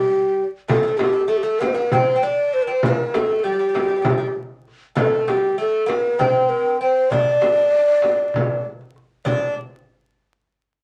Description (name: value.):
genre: Turkish makam ensemble.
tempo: 196 BPM (eighths).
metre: 7/8.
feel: straight.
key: D makam hicaz.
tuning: A4 = 436 Hz.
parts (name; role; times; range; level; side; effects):
breathy mellow ney; melody; 0.0-9.5 s; G4 to D5; -20 LUFS; equal; none.
Greek bouzouki; second line; 0.0-9.5 s; G3 to D4; -29 LUFS; equal; none.
darbuka; percussion; 0.1-9.6 s; none; -30 LUFS; equal; none.
frame drum; percussion; 0.7-9.5 s; none; -27 LUFS; equal; none.
room: light reverb.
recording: vinyl crackle.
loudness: -19 LUFS.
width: mono.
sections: 0.0-9.3 A section; 9.3-10.8 B section.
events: none.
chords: none.